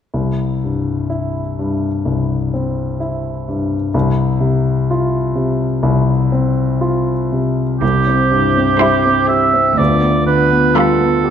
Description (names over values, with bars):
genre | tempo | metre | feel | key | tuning
classical, romantic movement for piano and orchestra | 62 BPM | 4/4 | rubato | C major | A4 = 440 Hz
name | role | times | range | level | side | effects
warm grand piano | melody | 0.1-11.3 s | C2 to G4 | -15 LUFS | left 2 dB | none
warm cor anglais | second line | 7.8-11.3 s | G4 to E5 | -15 LUFS | right 5 dB | none
mellow French horn section | sustained chords | 7.8-11.3 s | B3 to F4 | -19 LUFS | left 1 dB | none
clear chamber cello section | bass | 7.8-10.6 s | C2 to D2 | -22 LUFS | right 7 dB | none
warm chamber violin section | melody | 8.8-11.3 s | B5 to C6 | -25 LUFS | right 2 dB | none
rich chamber violin section | second line | 8.8-11.3 s | E4 to F4 | -21 LUFS | left 1 dB | none
rich studio viola section | accompaniment | 8.8-11.3 s | G3 | -24 LUFS | right 2 dB | none
room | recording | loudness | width
moderate scoring stage reverb, RT60 1.8 s | minimal, uncompressed stereo recording | -13 LUFS | side -8 dB against mid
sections
0.1-7.8 A section; 7.8-11.3 B section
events
none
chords
0.1 C; 3.9 F5/C; 7.8 C; 9.8 G7/D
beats
| 0.14 1.11 2.06 3.01 | 3.94 4.88 5.82 6.80 | 7.82 8.81 9.79 10.77